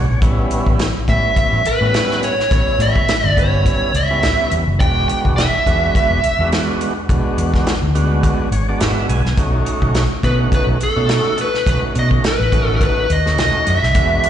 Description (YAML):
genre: straight-eighth soul blues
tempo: 105 BPM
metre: 4/4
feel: swing 56% on 16ths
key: unclear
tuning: A4 = 440 Hz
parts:
  - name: tonewheel organ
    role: accompaniment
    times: 0.0-14.3 s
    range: G3 to G#5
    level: -22 LUFS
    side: right 2 dB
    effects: slow rotary speaker, overdrive, slapback echo
  - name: vintage muted fingered electric bass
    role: bass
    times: 0.0-14.2 s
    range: E1 to B2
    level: -18 LUFS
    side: equal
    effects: none
  - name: warm soul drum kit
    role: drums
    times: 0.2-14.3 s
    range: hi-hat, kick drum, snare drum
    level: -19 LUFS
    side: equal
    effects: slapback echo
  - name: smooth overdriven lead guitar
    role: melody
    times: 1.1-6.5, 10.2-14.3 s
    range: A4 to G5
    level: -17 LUFS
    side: equal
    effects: slapback echo
room: studio reverb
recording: live gig heard through the venue's PA, recital hall reverb, nothing above 10.3 kHz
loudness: -14 LUFS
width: side -10 dB against mid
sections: 0.0-14.3 A section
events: tonewheel organ fill 0.0, 8.2-9.4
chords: 0.2 A9; 4.8 E9; 9.4 B9